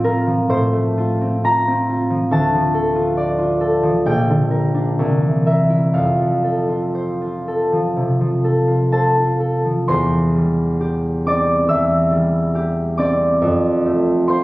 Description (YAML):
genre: classical, solo harp piece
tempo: 59-72 BPM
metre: 4/4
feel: rubato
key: F major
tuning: A4 = 441 Hz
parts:
  - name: concert harp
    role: solo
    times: 0.0-14.4 s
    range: Bb1 to E6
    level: -15 LUFS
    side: equal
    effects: none
room: wet recital hall reverb, RT60 1.6 s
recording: recorded on a phone in the room, club reverb, compression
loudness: -15 LUFS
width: side -18 dB against mid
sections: 0.0-9.9 A section; 9.9-14.4 B section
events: none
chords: 0.0 F/A; 2.3 Dm; 4.1 Gm/Bb; 5.0 C7; 6.0 F; 9.9 C/E; 13.4 F